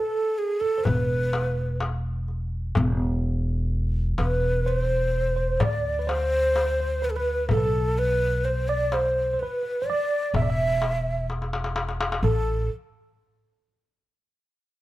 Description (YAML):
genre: Arabic maqam ensemble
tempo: 126 BPM (eighths)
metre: 10/8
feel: straight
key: E maqam hijaz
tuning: A4 = 440 Hz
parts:
  - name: breathy mellow ney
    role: melody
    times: 0.0-12.7 s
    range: G#4 to E5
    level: -25 LUFS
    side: equal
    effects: none
  - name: tine electric piano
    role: second line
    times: 0.0-12.7 s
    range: A4 to E5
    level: -32 LUFS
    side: right 6 dB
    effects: none
  - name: upright bass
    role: bass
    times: 0.9-12.7 s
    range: E1 to D2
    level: -26 LUFS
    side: equal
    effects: none
  - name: darbuka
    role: percussion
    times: 0.9-12.7 s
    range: none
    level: -28 LUFS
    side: left 3 dB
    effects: none
room: little or no reverb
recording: close, detailed microphones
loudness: -22 LUFS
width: side -16 dB against mid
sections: 0.0-12.2 A section; 12.2-14.8 B section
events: drum fill 11.3-12.2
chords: none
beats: 0.38 0.86 1.33 1.80 2.28 | 2.75 3.23 3.70 4.17 4.65 5.12 5.60 6.07 6.54 7.02 | 7.49 7.97 8.44 8.92 9.39 9.87 10.34 10.81 11.29 11.76 | 12.24